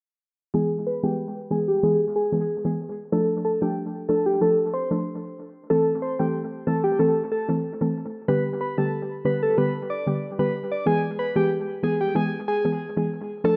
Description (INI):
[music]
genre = dancehall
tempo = 93 BPM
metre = 4/4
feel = straight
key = unclear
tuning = A4 = 440 Hz
[part]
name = soft struck synth lead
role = melody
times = 0.5-13.6 s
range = G4 to D5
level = -27 LUFS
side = equal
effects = chorus, low-pass filter, analog delay
[part]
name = soft round pluck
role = accompaniment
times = 0.5-13.6 s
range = D3 to A4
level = -28 LUFS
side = equal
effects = chorus, low-pass filter, analog delay
[sound]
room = wet spring reverb, RT60 1.2 s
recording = echo-heavy mix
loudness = -24 LUFS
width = mono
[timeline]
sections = 0.5-13.6 A section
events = filter sweep 0.5-13.6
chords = 0.5 E; 3.1 Dm; 5.7 Am; 8.3 G; 10.9 E